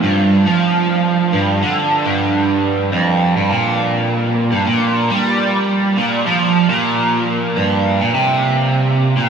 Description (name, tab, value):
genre	rock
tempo	103 BPM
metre	4/4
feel	straight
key	G minor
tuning	A4 = 440 Hz
part	crunchy overdriven guitar	solo	0.0-9.3 s	F2 to G3	-13 LUFS	right 2 dB	flanger
room	wet huge ambient reverb, RT60 7.6 s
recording	dreamy mix soaked in reverb, small room reverb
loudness	-13 LUFS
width	side -6 dB against mid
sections	0.0-9.3 A section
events	none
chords	none